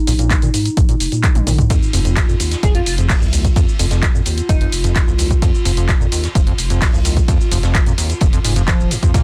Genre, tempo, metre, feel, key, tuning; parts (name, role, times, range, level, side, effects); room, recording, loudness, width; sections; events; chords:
acid house; 129 BPM; 4/4; straight; F minor; A4 = 440 Hz
warbly tape-like pad; sustained chords; 0.0-9.2 s; Eb4 to F4; -29 LUFS; equal; chorus, built-in reverb, sidechain pumping
deep acid bass; riff; 0.1-9.2 s; Eb2 to Ab3; -22 LUFS; equal; analog chorus, digital delay
saturated sub bass; bass; 0.1-8.9 s; Eb1 to Bb2; -22 LUFS; equal; sidechain pumping
punchy analog drum machine; drums; 0.1-9.2 s; handclaps, hi-hat, shaker, toms; -24 LUFS; equal
electronic kick drum; drums; 0.3-9.2 s; -18 LUFS; equal
vintage drum kit; drums; 1.7-9.2 s; hi-hat, ride cymbal, snare drum; -34 LUFS; equal; sidechain pumping on cymbals, high-pass filter on cymbals, sidechain pumping on hats, high-pass filter on hats, high-pass filter on snare, high-pass filter on room
airy dreamy lead; melody; 2.6-4.7 s; Eb4 to Ab4; -29 LUFS; equal; chorus, digital delay
little or no reverb; dense, heavily limited modern master; -15 LUFS; mono
0.0-9.2 A section
drum fill 1.4-1.7
0.0 Bb5; 1.7 F7(no3)